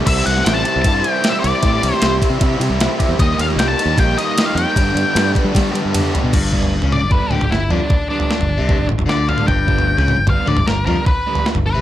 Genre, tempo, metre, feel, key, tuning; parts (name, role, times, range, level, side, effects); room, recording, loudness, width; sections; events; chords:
indie rock; 153 BPM; 4/4; straight; G major; A4 = 439 Hz
string machine, violas; sustained chords; 0.0-6.3 s; G4 to C6; -30 LUFS; equal
biting overdriven guitar; riff; 0.0-11.8 s; G2 to G4; -23 LUFS; left 4 dB
raw garage guitar; riff; 0.0-11.7 s; G2 to G4; -24 LUFS; right 7 dB; overdrive, wide subtle chorus, slapback echo
fingered electric bass; bass; 0.0-11.8 s; G1 to G3; -20 LUFS; equal
octave-fuzz lead guitar; melody; 0.1-11.8 s; D4 to A5; -20 LUFS; left 3 dB; distortion, slapback echo
clean 12-bit digital drum machine; drums; 0.1-11.6 s; crash cymbal, kick drum, ride cymbal, snare drum, toms; -18 LUFS; equal
digital ambience; -14 LUFS; side -12 dB against mid
0.0-6.3 A section; 6.3-11.8 B section
drum fill 5.5-6.3; lead electric guitar solo 6.3-11.8
0.1 C; 3.2 Ebadd9; 4.8 Gadd9; 6.3 G